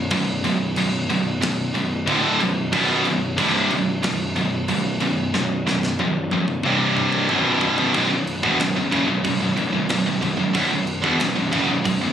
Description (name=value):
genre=heavy metal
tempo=92 BPM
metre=4/4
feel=straight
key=B phrygian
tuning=A4 = 441 Hz
part: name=scooped high-gain guitar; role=riff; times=0.0-12.1 s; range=B1 to D3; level=-23 LUFS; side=left 7 dB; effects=distortion
part: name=tight distorted guitar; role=riff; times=0.0-12.1 s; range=B1 to D3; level=-23 LUFS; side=right 8 dB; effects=distortion
part: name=fuzz picked electric bass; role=bass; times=0.0-12.1 s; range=B0 to F#1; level=-26 LUFS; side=equal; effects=overdrive
part: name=tight metal drum kit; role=drums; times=0.1-12.0 s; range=crash cymbal, kick drum, snare drum, toms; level=-27 LUFS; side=equal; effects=none
room=light reverb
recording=recorded on a phone in the room, studio reverb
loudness=-18 LUFS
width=side -9 dB against mid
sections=0.0-7.9 A section; 7.9-12.1 B section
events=half time 0.0-7.9; drum fill 5.3-7.9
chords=0.0 Bm; 6.6 C5; 7.3 B5